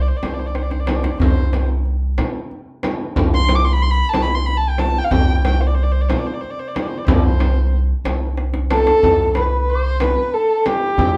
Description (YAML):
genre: Persian modal ensemble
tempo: 92 BPM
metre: 3/4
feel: straight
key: unclear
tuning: A4 = 441 Hz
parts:
  - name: dark kamancheh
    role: melody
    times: 0.0-11.2 s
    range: G4 to D6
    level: -22 LUFS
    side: equal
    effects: none
  - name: upright bass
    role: bass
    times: 0.0-11.2 s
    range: C2 to C3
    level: -21 LUFS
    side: equal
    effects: none
  - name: frame drum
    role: percussion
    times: 0.2-11.1 s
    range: none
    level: -26 LUFS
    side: equal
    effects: none
  - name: tombak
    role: percussion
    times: 0.2-11.1 s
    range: none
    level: -25 LUFS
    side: equal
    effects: none
  - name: mellow alto ocarina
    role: second line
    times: 8.7-11.2 s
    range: G5 to D6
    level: -25 LUFS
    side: equal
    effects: none
room: wet small room reverb, RT60 0.6 s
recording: heard from further back in the room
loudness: -18 LUFS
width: mono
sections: 0.0-9.0 A section; 9.0-11.2 B section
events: drum fill 0.6-1.2, 8.4-9.0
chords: none